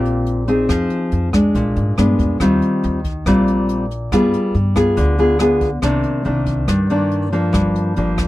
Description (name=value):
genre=bossa nova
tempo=140 BPM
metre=4/4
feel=straight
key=Eb major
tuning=A4 = 438 Hz
part: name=nylon-string guitar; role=accompaniment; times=0.0-8.3 s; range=G2 to Ab4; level=-16 LUFS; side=left 1 dB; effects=none
part: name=upright bass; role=bass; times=0.0-8.3 s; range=G1 to Ab2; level=-21 LUFS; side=equal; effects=none
part: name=jazz brush drum kit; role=drums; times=0.1-8.3 s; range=hi-hat, kick drum, rim click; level=-25 LUFS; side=equal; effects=none
room=light reverb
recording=dry, close 1970s-style studio recording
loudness=-14 LUFS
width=side -16 dB against mid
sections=0.0-2.4 A section; 2.4-8.3 A section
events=none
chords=0.0 Eb69; 0.7 Fm7; 1.6 Bb7b9; 2.4 Eb69; 4.1 G7b9; 5.8 Cm9; 7.5 Gm7